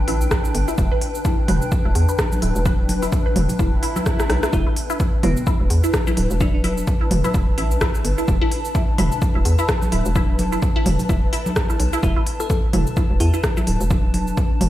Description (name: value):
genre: minimal techno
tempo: 128 BPM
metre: 4/4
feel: swing 57% on 16ths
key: E minor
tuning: A4 = 440 Hz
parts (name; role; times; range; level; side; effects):
- hollow knocking FM bass; bass; 0.0-14.7 s; D1 to E2; -20 LUFS; equal; sidechain pumping
- granular cloud pad; texture; 0.0-14.7 s; D4 to A5; -28 LUFS; left 2 dB; built-in reverb, sidechain pumping
- resonant blip pluck; riff; 0.1-13.6 s; E4 to B4; -28 LUFS; right 1 dB; phaser, wide subtle chorus, sidechain pumping, dub echo
- techno drum kit; drums; 0.1-14.7 s; cabasa, hi-hat, rim click; -27 LUFS; equal; none
- electronic kick drum; drums; 0.3-14.5 s; none; -20 LUFS; equal; none
- electronic toms and congas; percussion; 1.5-14.7 s; none; -26 LUFS; right 1 dB; none
- swell; sound effects; 3.7-4.5 s; none; -32 LUFS; left 1 dB; none
- bell-like FM electric piano; melody; 4.5-6.6, 12.0-13.4 s; B3 to A4; -30 LUFS; equal; chorus, dub echo
room: little or no reverb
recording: played on a big sound system in a bare room, stone room reverb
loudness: -17 LUFS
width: side -14 dB against mid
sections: 0.0-14.7 A section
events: swell 3.7-4.5; drum fill 4.1-4.5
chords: 0.0 Em7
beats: 0.31 | 0.78 1.25 1.72 2.19 | 2.65 3.12 3.59 4.06 | 4.53 5.00 5.47 5.94 | 6.41 6.87 7.34 7.81 | 8.28 8.75 9.22 9.69 | 10.15 10.62 11.09 11.56 | 12.03 12.50 12.97 13.44 | 13.90 14.37